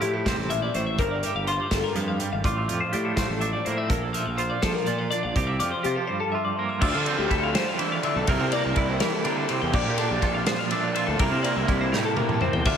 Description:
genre	math rock and midwest emo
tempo	82 BPM (dotted quarters)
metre	6/8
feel	straight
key	unclear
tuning	A4 = 440 Hz
part	twelve-string electric guitar	accompaniment	0.0-12.8 s	F2 to Bb4	-28 LUFS	right 5 dB	tremolo, slapback echo
part	twelve-string electric guitar	arpeggios	0.0-12.8 s	G4 to G5	-28 LUFS	left 5 dB	phaser, slapback echo
part	fuzz fingered electric bass	bass	0.0-12.8 s	G1 to D3	-30 LUFS	equal	overdrive
part	loose indie drum kit	drums	0.0-12.8 s	crash cymbal, hi-hat, kick drum, ride cymbal, snare drum, toms	-28 LUFS	equal	none
part	raw garage guitar	riff	6.8-12.8 s	Bb2 to E4	-28 LUFS	right 1 dB	overdrive, slapback echo
room	moderate lush hall reverb, RT60 2.0 s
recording	big arena sound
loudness	-22 LUFS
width	side -8 dB against mid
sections	0.0-6.8 A section; 6.8-12.8 B section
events	drum fill 11.9-12.7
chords	0.0 Fmaj7/A; 1.0 Gm7; 2.4 Dm7/A; 3.9 Bbmaj7; 5.4 C7sus4; 6.8 Dm9; 8.3 C7; 9.7 Bb6; 11.2 C7

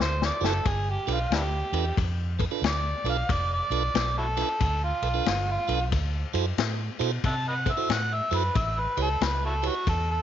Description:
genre	electric blues shuffle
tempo	91 BPM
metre	4/4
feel	swing 64% on 8ths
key	unclear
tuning	A4 = 437 Hz
part	overdriven harmonica	melody	0.0-10.2 s	D4 to A5	-28 LUFS	right 1 dB	slapback echo
part	vintage muted fingered electric bass	bass	0.0-10.2 s	F1 to C3	-29 LUFS	equal	none
part	vintage drum kit	drums	0.0-10.1 s	kick drum, ride cymbal, snare drum	-30 LUFS	left 4 dB	none
part	tonewheel organ	accompaniment	0.4-9.7 s	D4 to C#5	-33 LUFS	right 14 dB	overdrive, stopped rotary speaker
room	light reverb, studio ambience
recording	1960s-style stereo, nothing above 7.5 kHz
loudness	-24 LUFS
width	side -10 dB against mid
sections	0.0-10.2 A section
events	drum fill 0.0-0.7; harmonica solo 0.0-10.2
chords	0.0 D9; 0.7 G9 (rootless); 5.9 D9 (rootless); 8.6 A9

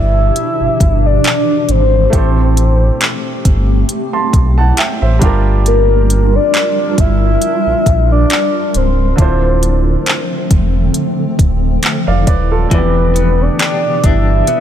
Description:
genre	contemporary R&B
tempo	68 BPM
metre	4/4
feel	swing 54% on 16ths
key	E phrygian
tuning	A4 = 441 Hz
part	soft octave-layered synth lead	melody	0.0-14.6 s	Bb4 to E5	-16 LUFS	left 1 dB	chorus, phaser, ping-pong delay
part	clear baby grand piano	accompaniment	0.0-14.6 s	D3 to C6	-21 LUFS	right 4 dB	none
part	granular cloud pad	sustained chords	0.0-14.6 s	B2 to Bb4	-19 LUFS	equal	built-in reverb
part	sub bass with octave	bass	0.0-14.4 s	C#1 to B1	-13 LUFS	equal	none
part	smooth R&B drum kit	drums	0.4-14.6 s	handclaps, hi-hat, kick drum	-14 LUFS	equal	none
part	direct-recorded clean electric guitar	arpeggios	12.7-14.6 s	E3 to G4	-19 LUFS	left 8 dB	tremolo
room	little or no reverb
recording	none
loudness	-10 LUFS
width	side -10 dB against mid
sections	0.0-14.6 A section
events	none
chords	0.0 Em7; 2.1 Am7; 5.2 Gm7; 9.2 Dm7; 12.7 Em7

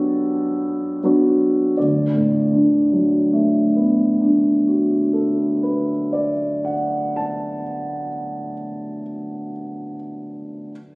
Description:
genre	classical, impressionist solo piano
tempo	44 BPM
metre	5/4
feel	rubato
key	D major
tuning	A4 = 440 Hz
part	warm concert grand piano	solo	0.0-10.7 s	D2 to F#6	-18 LUFS	equal	none
room	moderate recital hall reverb, RT60 1.4 s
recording	recorded on a phone in the room, studio reverb, compression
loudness	-16 LUFS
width	side -28 dB against mid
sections	0.0-1.8 A section; 1.8-8.5 B section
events	slowing down 0.0-1.8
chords	0.0 Bm7; 1.8 D6

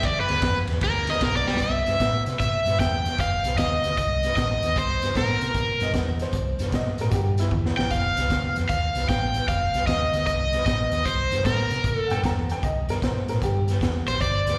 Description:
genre	electric blues shuffle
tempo	152 BPM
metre	4/4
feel	swing 65% on 8ths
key	unclear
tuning	A4 = 441 Hz
part	cranked stack guitar	melody	0.0-14.6 s	Bb4 to G5	-26 LUFS	equal	overdrive, slapback echo
part	vintage muted fingered electric bass	bass	0.0-14.6 s	F1 to C3	-30 LUFS	equal	none
part	raw garage drum kit	drums	0.0-14.5 s	hi-hat, kick drum, ride cymbal, snare drum, toms	-29 LUFS	equal	none
part	warm upright piano	second line	5.8-7.6, 12.1-13.8 s	E4 to Bb5	-33 LUFS	equal	slapback echo
room	light reverb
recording	live gig heard through the venue's PA, recital hall reverb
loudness	-24 LUFS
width	mono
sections	0.0-1.6 A section; 1.6-14.6 B section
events	overdriven electric guitar solo 0.0-1.6; drum fill 1.4, 7.5-7.9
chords	0.0 G7; 1.6 C7; 3.2 F7; 4.8 C7; 7.9 F7; 11.1 C7

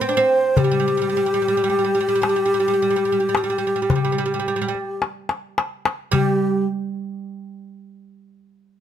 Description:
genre	Arabic maqam ensemble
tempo	108 BPM (eighths)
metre	10/8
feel	straight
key	unclear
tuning	A4 = 441 Hz
part	breathy bright low ney	melody	0.0-6.7 s	G4 to C5	-20 LUFS	left 2 dB	plate reverb
part	oud	second line	0.0-6.6 s	G3 to D4	-23 LUFS	right 6 dB	none
part	darbuka	percussion	0.6-6.7 s	none	-22 LUFS	left 5 dB	none
room	light reverb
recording	none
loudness	-18 LUFS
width	side -10 dB against mid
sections	0.0-6.1 A section; 6.1-8.8 B section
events	drum fill 5.0-6.1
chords	none

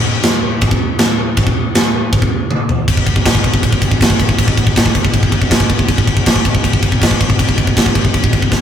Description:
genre	metal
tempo	159 BPM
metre	4/4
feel	straight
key	none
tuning	none
part	tight metal drum kit	drums	0.2-8.6 s	china cymbal, crash cymbal, kick drum, snare drum, toms	-11 LUFS	equal	none
room	light reverb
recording	rough rehearsal-room recording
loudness	-11 LUFS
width	side -9 dB against mid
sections	0.0-2.9 A section; 2.9-8.6 B section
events	drum fill 2.5-2.9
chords	none

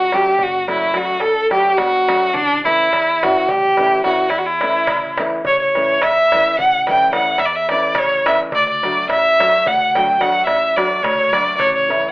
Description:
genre	balkan folk, Balkan wedding band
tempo	214 BPM (eighths)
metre	11/8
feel	straight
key	A mixolydian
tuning	A4 = 440 Hz
part	rich violin	melody	0.0-12.1 s	D4 to G5	-14 LUFS	equal	none
part	upright bass	bass	0.0-11.9 s	F#1 to E2	-35 LUFS	equal	none
part	nylon-string guitar	accompaniment	0.1-12.1 s	E3 to F#4	-24 LUFS	left 1 dB	none
part	darbuka	percussion	0.1-12.0 s	none	-23 LUFS	equal	none
room	moderate studio reverb, RT60 0.6 s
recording	telephone sound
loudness	-13 LUFS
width	side -22 dB against mid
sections	0.0-5.4 A section; 5.4-12.1 B section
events	none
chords	0.0 F#m; 2.4 A; 8.5 D; 11.6 A

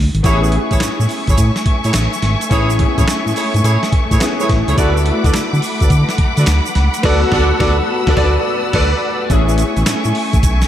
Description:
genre	R&B, new jack swing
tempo	106 BPM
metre	4/4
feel	swing 65% on 16ths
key	A major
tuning	A4 = 440 Hz
part	smooth synth bass	bass	0.0-10.6 s	G#1 to D3	-15 LUFS	equal	none
part	boom bap sampler-style drum kit	drums	0.1-10.7 s	crash cymbal, handclaps, hi-hat, kick drum, snare drum	-18 LUFS	equal	none
part	clear concert grand piano	accompaniment	0.2-10.7 s	B3 to D5	-20 LUFS	left 2 dB	tube saturation, ensemble chorus
part	muted studio string section	sustained chords	0.2-10.7 s	A3 to E6	-21 LUFS	equal	none
part	mellow horn section	stabs	0.2-8.9 s	E4 to D5	-22 LUFS	right 2 dB	tape echo
part	tube shaker	percussion	0.3-10.7 s	none	-30 LUFS	right 9 dB	none
room	moderate plate reverb, RT60 2.6 s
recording	dreamy mix soaked in reverb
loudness	-12 LUFS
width	side -11 dB against mid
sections	0.0-9.3 A section; 9.3-10.7 B section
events	band accent 7.0-9.3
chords	0.2 Amaj7; 4.8 D6; 9.3 Amaj7

